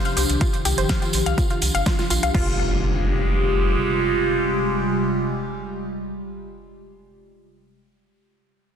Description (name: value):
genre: progressive house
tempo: 124 BPM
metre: 4/4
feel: straight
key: F dorian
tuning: A4 = 439 Hz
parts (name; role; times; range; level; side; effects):
- evolving wavetable pad; sustained chords; 0.0-6.6 s; C3 to G4; -23 LUFS; right 1 dB; phaser, built-in reverb, sidechain pumping
- tambourine; percussion; 0.0-2.3 s; none; -30 LUFS; right 3 dB; none
- analog pluck; arpeggios; 0.1-2.6 s; F4 to F5; -26 LUFS; left 2 dB; chorus, sidechain pumping, digital delay
- pop drum kit; drums; 0.1-2.4 s; crash cymbal, hi-hat, snare drum; -29 LUFS; equal; overdrive
- round analog bass; bass; 0.2-3.8 s; F1 to C2; -23 LUFS; equal; sidechain pumping
- electronic kick drum; drums; 0.4-2.4 s; none; -22 LUFS; equal; overdrive
- impact; sound effects; 2.3-6.6 s; none; -30 LUFS; equal; none
room: moderate lush hall reverb, RT60 2.1 s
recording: dense, heavily limited modern master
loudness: -19 LUFS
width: side -8 dB against mid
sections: 0.0-2.3 A section; 2.3-6.2 B section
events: filter sweep on ambient pad 0.0-2.3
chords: 0.0 Cmadd9; 2.3 Fmadd9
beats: | 0.41 0.89 1.38 1.86 | 2.35 2.83 3.31 3.80 | 4.28 4.76 5.25 5.73